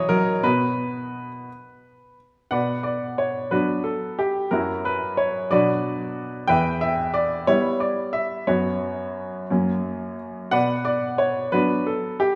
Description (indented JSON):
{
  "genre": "classical-period piano sonatina",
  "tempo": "60 BPM (dotted quarters)",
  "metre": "6/8",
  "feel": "straight",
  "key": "B minor",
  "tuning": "A4 = 440 Hz",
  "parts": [
    { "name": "clear baby grand piano", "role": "solo", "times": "0.0-12.4 s", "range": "E2 to G5", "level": "-24 LUFS", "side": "equal", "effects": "none" }
  ],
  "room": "wet recital hall reverb, RT60 1.6 s",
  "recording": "none",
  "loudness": "-23 LUFS",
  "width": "mono",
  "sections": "0.0-2.5 A section; 2.5-12.4 A section",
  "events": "none",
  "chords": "0.4 B5; 2.5 Bm; 4.5 F#5; 5.5 Bm; 6.5 Em; 8.5 F#sus4; 9.5 F#; 10.5 Bm"
}